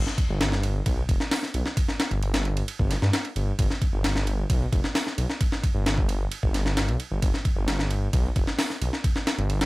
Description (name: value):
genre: breakbeat, breaks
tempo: 132 BPM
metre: 4/4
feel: straight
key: unclear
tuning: A4 = 442 Hz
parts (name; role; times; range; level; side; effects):
- detuned saw bass; bass; 0.0-9.7 s; F1 to G2; -26 LUFS; equal; none
- breakbeat sampler-style drum kit; drums; 0.1-9.7 s; hi-hat, kick drum, ride cymbal, snare drum; -25 LUFS; equal; none
room: little or no reverb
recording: none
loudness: -23 LUFS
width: side -21 dB against mid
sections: 0.0-9.7 A section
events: none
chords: none